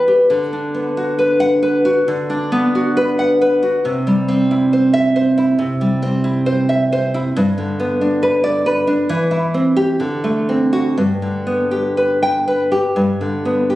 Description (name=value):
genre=romantic piece for solo classical guitar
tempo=67 BPM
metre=4/4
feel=uneven beats, rubato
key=G major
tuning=A4 = 440 Hz
part: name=nylon-string guitar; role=solo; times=0.0-13.8 s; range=G2 to G5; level=-14 LUFS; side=equal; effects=none
room=moderate recital hall reverb, RT60 1.6 s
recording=recorded on a phone in the room, studio reverb, compression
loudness=-14 LUFS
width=side -15 dB against mid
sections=0.0-13.8 A section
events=none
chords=0.3 Bm/D; 3.8 C; 7.4 G; 9.1 C/E; 10.0 D7; 11.0 G